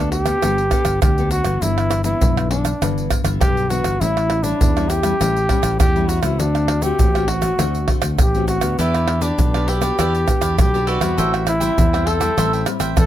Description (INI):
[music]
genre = samba and choro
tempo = 100 BPM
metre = 4/4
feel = straight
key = unclear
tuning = A4 = 440 Hz
[part]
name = breathy trumpet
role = melody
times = 0.0-13.1 s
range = D4 to A4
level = -21 LUFS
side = equal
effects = none
[part]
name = nylon-string guitar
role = accompaniment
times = 0.0-13.1 s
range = G2 to A4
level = -25 LUFS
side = left 5 dB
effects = none
[part]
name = fingered electric bass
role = bass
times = 0.0-13.1 s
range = G1 to E2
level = -22 LUFS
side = equal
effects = none
[part]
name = pandeiro, egg shaker, tamborim and surdo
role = percussion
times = 0.1-13.1 s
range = none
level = -19 LUFS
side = right 1 dB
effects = none
[part]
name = cavaquinho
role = accompaniment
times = 8.8-13.1 s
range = E4 to G5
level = -25 LUFS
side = right 3 dB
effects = none
[sound]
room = little or no reverb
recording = close, detailed microphones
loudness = -16 LUFS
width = side -12 dB against mid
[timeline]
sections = 0.0-13.1 A section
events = none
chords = 0.0 Gadd9; 1.6 Em7/G; 4.0 A7; 6.4 D7; 8.8 Em7; 11.2 Am7